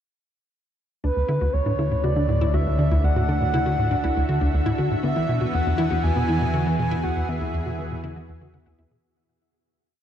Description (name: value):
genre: ambient, sequencer-driven space music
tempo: 120 BPM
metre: 4/4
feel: straight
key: D lydian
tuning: A4 = 440 Hz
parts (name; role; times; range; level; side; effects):
- breathy flute-like synth lead; melody; 1.0-8.3 s; B4 to G#5; -27 LUFS; right 1 dB; wide subtle chorus, shimmer reverb, ping-pong delay
- lush unison pad; sustained chords; 1.0-9.0 s; D3 to E5; -31 LUFS; equal; chorus, shimmer reverb
- wide unison pluck; arpeggios; 1.0-9.0 s; B3 to F#5; -30 LUFS; left 2 dB; auto-pan, shimmer reverb, ping-pong delay
- tight sequencer bass; riff; 1.0-9.0 s; D2 to E3; -24 LUFS; equal; ping-pong delay
- analog drone; bass; 1.7-9.0 s; D2 to E2; -27 LUFS; equal; chorus
room: moderate huge ambient reverb, RT60 7.9 s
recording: dark, warm production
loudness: -20 LUFS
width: side -10 dB against mid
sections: 1.0-9.0 A section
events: fade-in on analog synth pad 1.0-9.0; fade-out 6.4-9.0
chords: 1.0 Dadd9; 5.0 Eadd9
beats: | 1.04 1.54 2.04 2.54 | 3.04 3.54 4.04 4.54 | 5.04 5.54 6.04 6.54 | 7.04 7.54 8.04 8.54